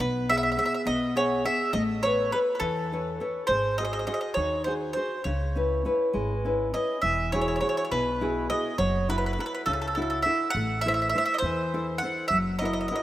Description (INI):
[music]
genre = italian folk, Italian serenade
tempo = 68 BPM (dotted quarters)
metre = 6/8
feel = straight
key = C# minor, E major from 7.0 s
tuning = A4 = 440 Hz
[part]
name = bowl-back mandolin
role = melody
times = 0.0-13.0 s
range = A4 to F#5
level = -27 LUFS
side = right 1 dB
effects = none
[part]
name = nylon-string guitar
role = accompaniment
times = 0.0-13.0 s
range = B2 to F#5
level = -28 LUFS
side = left 1 dB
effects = none
[part]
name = upright bass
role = bass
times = 0.0-12.9 s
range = E1 to E2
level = -33 LUFS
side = right 1 dB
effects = none
[sound]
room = moderate lush hall reverb, RT60 2.5 s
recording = rough home demo mix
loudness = -24 LUFS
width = side -14 dB against mid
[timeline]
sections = 0.0-7.0 A section; 7.0-13.0 B section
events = none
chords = 0.0 Eadd9/B; 1.7 Aadd9; 3.5 G#7; 5.2 C#m7; 7.0 Eadd9; 8.8 F#m7; 10.5 Am; 12.3 F#7